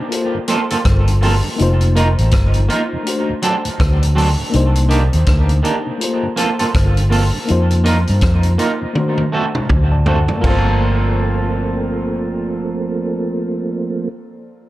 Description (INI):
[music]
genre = lovers rock reggae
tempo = 81 BPM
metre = 4/4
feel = swing 60% on 16ths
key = G minor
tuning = A4 = 441 Hz
[part]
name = FM electric piano with tremolo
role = accompaniment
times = 0.0-14.7 s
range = A3 to A5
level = -24 LUFS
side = left 3 dB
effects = none
[part]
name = mellow tonewheel organ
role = accompaniment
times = 0.0-14.1 s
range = D2 to Eb4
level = -24 LUFS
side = right 2 dB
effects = chorus vibrato, slow rotary speaker
[part]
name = vintage drum kit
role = drums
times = 0.1-10.6 s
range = crash cymbal, hi-hat, kick drum, rim click, toms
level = -20 LUFS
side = equal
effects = none
[part]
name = electric guitar at the edge of break-up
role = stabs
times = 0.5-14.2 s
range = Eb3 to Bb4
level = -21 LUFS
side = right 3 dB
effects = spring reverb, dub echo
[part]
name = vintage muted fingered electric bass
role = bass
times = 0.9-14.1 s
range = F1 to G2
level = -15 LUFS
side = equal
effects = none
[sound]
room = little or no reverb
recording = dark, warm production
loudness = -14 LUFS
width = side -16 dB against mid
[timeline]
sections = 0.0-10.4 A section; 10.4-13.4 B section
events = drum fill 9.0-10.4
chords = 0.1 Gm11; 1.6 F7sus4; 3.1 D7; 4.5 Cm9; 6.0 Gm11; 7.5 F7sus4; 9.0 D7; 10.4 Gm11